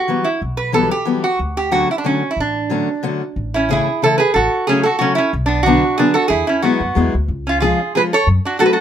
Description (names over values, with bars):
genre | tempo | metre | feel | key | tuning
musette waltz | 183 BPM | 3/4 | straight | D major, A major from 3.4 s | A4 = 440 Hz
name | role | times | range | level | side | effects
lap resonator guitar | melody | 0.0-8.8 s | B3 to C#5 | -16 LUFS | right 2 dB | none
fingerpicked steel-string acoustic guitar | accompaniment | 0.1-8.8 s | C#3 to F#4 | -18 LUFS | left 4 dB | none
upright bass | bass | 0.4-8.4 s | A1 to F#2 | -20 LUFS | left 1 dB | none
room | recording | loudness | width
light reverb | minimal, uncompressed stereo recording | -14 LUFS | side -9 dB against mid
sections
0.0-3.4 A section; 3.4-8.8 B section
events
none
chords
0.0 Emadd9; 1.4 Dmaj7; 3.4 A; 4.4 F#m/A; 5.3 Bm; 6.3 Eadd9; 7.3 C#; 8.3 F#m